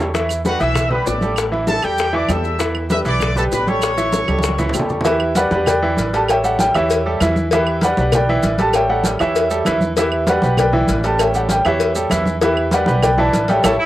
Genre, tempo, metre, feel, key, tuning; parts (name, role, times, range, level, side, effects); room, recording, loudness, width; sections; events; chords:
latin, salsa; 196 BPM; 4/4; straight; A4 = 440 Hz
bright baby grand piano; accompaniment; 0.0-13.7 s; E3 to E5; -20 LUFS; right 1 dB; cassette tape, plate reverb
upright bass; bass; 0.0-13.8 s; A1 to E2; -23 LUFS; equal
bongos and cowbell; percussion; 0.0-13.7 s; -23 LUFS; left 6 dB
maracas; percussion; 0.0-13.7 s; -31 LUFS; right 5 dB
congas; percussion; 0.1-13.7 s; -22 LUFS; equal
claves; percussion; 0.3-13.7 s; -26 LUFS; right 7 dB
bright trumpet section; melody; 0.5-4.8 s; F#4 to E6; -22 LUFS; equal; cassette tape, plate reverb, analog delay
felt-muted upright piano; melody; 5.0-13.7 s; G4 to A5; -18 LUFS; equal; cassette tape, plate reverb
bright saxophone section; second line; 13.8-13.9 s; E4; -16 LUFS; right 1 dB; cassette tape
moderate booth ambience, RT60 0.2 s; home recording on cassette; -14 LUFS; side -14 dB against mid
0.0-5.1 A section; 5.1-13.9 B section
drum fill 4.3-5.1; band accent 13.6
0.1 Em7; 1.4 A5; 2.6 Em7; 3.8 A7; 5.1 Em7; 6.3 A7; 7.5 Em7; 8.7 A7; 10.0 Em7; 11.2 A7; 12.4 Em7